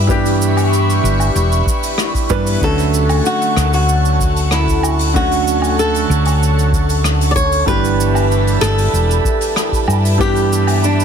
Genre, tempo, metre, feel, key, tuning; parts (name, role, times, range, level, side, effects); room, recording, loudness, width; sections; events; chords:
sunset chillout; 95 BPM; 4/4; straight; A4 = 439 Hz
clear baby grand piano; accompaniment; 0.0-11.0 s; D3 to B4; -20 LUFS; right 2 dB; auto-pan, ping-pong delay
airy breathy pad; sustained chords; 0.0-11.0 s; G4 to C#6; -22 LUFS; equal; chorus, phaser
hollow-body short-scale fingered electric bass; bass; 0.0-11.0 s; E1 to G2; -16 LUFS; equal
electronic kick drum; drums; 0.1-10.3 s; -20 LUFS; equal; overdrive
soft brush drum kit; drums; 0.1-11.0 s; cabasa, hi-hat, rim click, woodblock; -23 LUFS; right 1 dB
flamenco guitar; melody; 2.6-11.0 s; D4 to D5; -19 LUFS; equal; ping-pong delay
light reverb; dense, heavily limited modern master; -12 LUFS; side -7 dB against mid
0.0-11.0 A section
0.0 G6; 2.6 Dmaj7; 7.7 G6